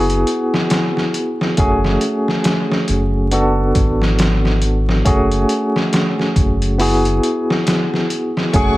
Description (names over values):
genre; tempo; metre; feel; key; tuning
trip hop; 69 BPM; 4/4; swing 59% on 16ths; unclear; A4 = 444 Hz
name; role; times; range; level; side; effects
barky tine electric piano; accompaniment; 0.0-8.8 s; A3 to A4; -17 LUFS; equal; tremolo, tape echo
round analog bass; bass; 0.0-8.8 s; F#1 to G#1; -18 LUFS; equal; none
trip hop sampler-style drum kit; drums; 0.1-8.8 s; hi-hat, kick drum, snare drum; -18 LUFS; equal; none
warm symphonic string section; sustained chords; 8.5-8.8 s; A3 to C#6; -22 LUFS; left 1 dB; none
room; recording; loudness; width
little or no reverb; vinyl crackle; -14 LUFS; side -17 dB against mid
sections
0.0-8.8 A section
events
none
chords
0.0 Eadd9/F#; 1.6 F#madd9; 3.3 Bm7/F#; 5.1 F#madd9; 6.8 Eadd9/F#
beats
0.71 | 1.58 2.45 3.32 4.19 | 5.06 5.93 6.80 7.67 | 8.54